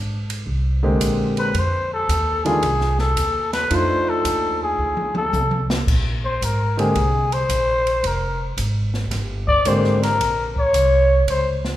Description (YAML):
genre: jazz, small-group swing and bop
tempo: 111 BPM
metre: 4/4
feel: swing 68% on 8ths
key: unclear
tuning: A4 = 441 Hz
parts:
  - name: upright bass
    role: bass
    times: 0.0-11.8 s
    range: F1 to F2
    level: -22 LUFS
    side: equal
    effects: none
  - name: open jazz drum kit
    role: drums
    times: 0.3-11.7 s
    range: crash cymbal, hi-hat, kick drum, ride cymbal, snare drum, toms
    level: -27 LUFS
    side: equal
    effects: none
  - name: warm concert grand piano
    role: accompaniment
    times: 0.8-10.0 s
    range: D3 to G4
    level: -23 LUFS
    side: equal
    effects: none
  - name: trumpet with bucket mute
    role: melody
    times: 1.4-11.5 s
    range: Ab4 to D5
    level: -20 LUFS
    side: left 1 dB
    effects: none
room: wet recital hall reverb, RT60 1.6 s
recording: recorded in a church or concert hall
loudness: -17 LUFS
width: side -13 dB against mid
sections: 0.0-11.8 A section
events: muted trumpet solo 0.0-11.8; drum fill 4.8-5.9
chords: 0.0 Bb13; 1.5 F13; 5.9 Bb7sus2; 10.2 Bbm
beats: 0.47 1.01 | 1.55 2.09 2.63 3.17 | 3.71 4.25 4.79 5.33 | 5.87 6.41 6.95 7.50 | 8.04 8.58 9.12 9.66 | 10.20 10.74 11.28